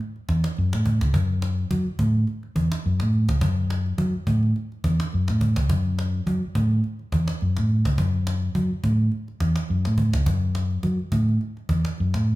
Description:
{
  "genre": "afrobeat",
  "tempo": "105 BPM",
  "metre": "4/4",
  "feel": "swing 55% on 16ths",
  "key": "F# minor",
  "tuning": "A4 = 438 Hz",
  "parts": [
    { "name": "cajon", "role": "drums", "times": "0.0-12.3 s", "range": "none", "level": "-29 LUFS", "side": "equal", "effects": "none" },
    { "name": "fingered electric bass", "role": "bass", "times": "0.3-12.4 s", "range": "C#2 to F#3", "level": "-21 LUFS", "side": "equal", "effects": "none" }
  ],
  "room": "moderate large studio reverb, RT60 1.1 s",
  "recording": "band playing live in one room",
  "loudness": "-21 LUFS",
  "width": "side -18 dB against mid",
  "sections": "0.0-12.4 A section",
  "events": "none",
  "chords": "none",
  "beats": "0.01 0.57 | 1.15 1.71 2.28 2.85 | 3.42 3.99 4.56 5.13 | 5.70 6.27 6.84 7.42 | 7.99 8.56 9.13 9.70 | 10.27 10.84 11.41 11.98"
}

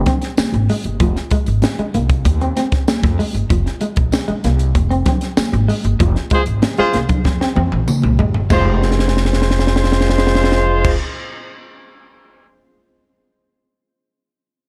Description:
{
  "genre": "funk",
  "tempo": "96 BPM",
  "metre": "4/4",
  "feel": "straight",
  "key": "F minor",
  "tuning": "A4 = 440 Hz",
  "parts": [
    { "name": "electric guitar at the edge of break-up", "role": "riff", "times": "0.1-10.0 s", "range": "F3 to C4", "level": "-26 LUFS", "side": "equal", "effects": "spring reverb" },
    { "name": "crisp fusion drum kit", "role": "drums", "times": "0.1-12.5 s", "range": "crash cymbal, hi-hat, kick drum, snare drum, toms", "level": "-20 LUFS", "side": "equal", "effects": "none" },
    { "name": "congas", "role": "percussion", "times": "0.1-10.9 s", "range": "none", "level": "-26 LUFS", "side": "equal", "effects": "none" },
    { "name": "upright bass", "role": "bass", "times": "0.4-10.9 s", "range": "F1 to F2", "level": "-20 LUFS", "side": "equal", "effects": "none" },
    { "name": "tambourine", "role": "percussion", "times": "0.4-10.9 s", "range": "none", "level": "-35 LUFS", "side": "equal", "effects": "none" },
    { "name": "warm horn section", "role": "second line", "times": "6.3-10.9 s", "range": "Ab3 to C5", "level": "-21 LUFS", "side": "equal", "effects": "none" }
  ],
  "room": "small room ambience",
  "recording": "cassette tape",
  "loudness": "-16 LUFS",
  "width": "mono",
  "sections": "0.0-8.5 A section; 8.5-11.0 B section",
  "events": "band accent 6.0-8.5; drum fill 7.3-8.5, 8.8-10.8",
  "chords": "0.0 Fm",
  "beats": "0.38 | 1.00 1.63 2.25 2.88 | 3.50 4.13 4.75 5.38 | 6.00 6.63 7.25 7.88 | 8.51 9.13 9.76 10.38"
}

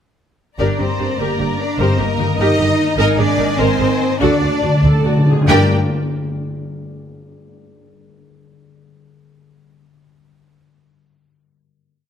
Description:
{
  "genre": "cinematic, heroic adventure film score",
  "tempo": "93-101 BPM (dotted quarters)",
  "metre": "6/8",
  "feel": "straight",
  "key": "G phrygian",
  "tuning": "A4 = 440 Hz",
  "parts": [
    { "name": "clear symphonic violin section", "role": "melody", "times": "0.6-5.7 s", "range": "Bb4 to G5", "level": "-23 LUFS", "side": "left 3 dB", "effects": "none" },
    { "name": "warm symphonic violin section", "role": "second line", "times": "0.6-5.7 s", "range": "D5 to Bb5", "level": "-24 LUFS", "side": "left 3 dB", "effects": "none" },
    { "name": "rich symphonic viola section", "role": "accompaniment", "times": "0.6-5.7 s", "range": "D4 to Bb4", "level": "-21 LUFS", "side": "right 2 dB", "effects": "none" },
    { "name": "concert harp", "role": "arpeggios", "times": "0.6-5.7 s", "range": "G2 to D5", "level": "-23 LUFS", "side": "left 8 dB", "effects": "none" },
    { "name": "rich symphonic cello section", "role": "bass", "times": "0.6-5.7 s", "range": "Bb3 to G4", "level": "-20 LUFS", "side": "right 3 dB", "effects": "none" },
    { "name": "rich symphonic double bass section", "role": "bass", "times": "0.6-5.7 s", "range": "G1 to G2", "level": "-20 LUFS", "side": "right 3 dB", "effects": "none" },
    { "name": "timpani", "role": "percussion", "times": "1.8-5.7 s", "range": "G2 to D3", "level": "-19 LUFS", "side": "equal", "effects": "none" }
  ],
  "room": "moderate scoring stage reverb, RT60 1.7 s",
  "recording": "close, detailed microphones",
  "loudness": "-14 LUFS",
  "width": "side -8 dB against mid",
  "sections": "0.6-5.5 theme; 5.5-6.8 final chord",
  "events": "slowing down 2.4-5.5; timpani fill 4.2-5.5",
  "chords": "0.6 Gm; 1.8 Eb/G; 3.0 Abadd9; 4.2 D; 5.5 Gm",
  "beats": "| 0.60 1.20 | 1.79 2.39 | 2.99 3.60 | 4.22 4.85 | 5.49"
}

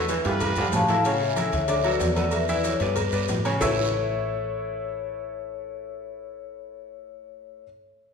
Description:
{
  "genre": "latin, salsa",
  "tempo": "187 BPM",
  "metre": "4/4",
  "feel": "straight",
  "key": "A major",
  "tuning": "A4 = 439 Hz",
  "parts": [
    { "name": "bright trumpet section", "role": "melody", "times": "0.0-0.9 s", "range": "D4 to B4", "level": "-32 LUFS", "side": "right 1 dB", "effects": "none" },
    { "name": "bright upright piano", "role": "accompaniment", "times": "0.0-7.6 s", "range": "C#3 to E5", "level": "-28 LUFS", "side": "right 1 dB", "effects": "none" },
    { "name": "woody fretless electric bass", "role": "bass", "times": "0.0-7.6 s", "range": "A1 to A2", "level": "-29 LUFS", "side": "right 1 dB", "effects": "none" },
    { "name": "brilliant trombone section", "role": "second line", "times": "0.1-0.9 s", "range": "C#3 to E3", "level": "-32 LUFS", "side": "right 1 dB", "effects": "none" },
    { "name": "congas", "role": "percussion", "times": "0.1-3.7 s", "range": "none", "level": "-35 LUFS", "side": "equal", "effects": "none" },
    { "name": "cowbell and bongos", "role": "percussion", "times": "0.1-3.7 s", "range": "none", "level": "-35 LUFS", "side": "left 4 dB", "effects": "none" },
    { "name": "guiro", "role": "percussion", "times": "0.1-3.7 s", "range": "none", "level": "-38 LUFS", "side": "right 6 dB", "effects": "none" },
    { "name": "maracas", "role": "percussion", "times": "0.1-3.7 s", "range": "none", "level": "-40 LUFS", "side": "left 5 dB", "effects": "none" },
    { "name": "timbales and agogo bells", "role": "percussion", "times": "0.1-3.7 s", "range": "none", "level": "-33 LUFS", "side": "right 6 dB", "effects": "none" },
    { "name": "vibraphone with medium mallets", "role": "melody", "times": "0.7-7.6 s", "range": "G4 to A5", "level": "-28 LUFS", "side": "left 6 dB", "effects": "none" }
  ],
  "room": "wet recital hall reverb, RT60 1.5 s",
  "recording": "recorded in a church or concert hall",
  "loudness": "-22 LUFS",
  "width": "side -6 dB against mid",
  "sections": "0.0-1.0 A section; 1.0-3.6 B section; 3.6-6.2 C section",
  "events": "drum fill 0.2-1.0",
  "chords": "0.4 G7; 1.0 A; 1.7 D; 2.3 E7sus4; 3.0 G; 3.6 Aadd9",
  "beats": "0.08 0.40 0.72 | 1.04 1.36 1.69 2.00 | 2.33 2.65 2.97 3.29 | 3.61 3.93 4.25 4.57 | 4.89 5.21 5.53 5.85"
}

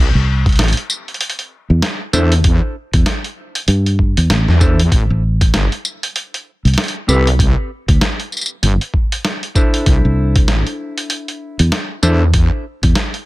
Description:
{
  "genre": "glitch hop",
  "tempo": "97 BPM",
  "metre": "4/4",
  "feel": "swing 59% on 16ths",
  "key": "unclear",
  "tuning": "A4 = 440 Hz",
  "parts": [
    { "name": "wobble bass", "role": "bass", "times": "0.0-12.5 s", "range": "G1 to E2", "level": "-13 LUFS", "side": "equal", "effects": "chorus, tube saturation" },
    { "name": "fingered electric bass", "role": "bass", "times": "0.1-12.9 s", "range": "A1 to G2", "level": "-13 LUFS", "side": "equal", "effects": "none" },
    { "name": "boom bap sampler-style drum kit", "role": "drums", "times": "0.5-13.2 s", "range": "hi-hat, snare drum, tambourine", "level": "-19 LUFS", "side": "equal", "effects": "none" },
    { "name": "electronic kick drum", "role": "drums", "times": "0.5-12.9 s", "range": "none", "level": "-14 LUFS", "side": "equal", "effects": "none" },
    { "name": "mellow electric guitar", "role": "stabs", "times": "2.1-12.2 s", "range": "C4 to C5", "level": "-21 LUFS", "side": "equal", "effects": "vintage 12-bit sampler grit, sidechain pumping, tape echo" }
  ],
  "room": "digital ambience",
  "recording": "none",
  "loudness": "-13 LUFS",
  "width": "side -19 dB against mid",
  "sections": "0.0-13.3 A section",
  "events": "none",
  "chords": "0.0 C6; 4.9 Am7; 9.9 C69",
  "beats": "0.59 1.21 1.82 | 2.44 3.06 3.68 4.30 | 4.92 5.54 6.15 6.77 | 7.39 8.01 8.63 9.25 | 9.86 10.48 11.10 11.72 | 12.34 12.96"
}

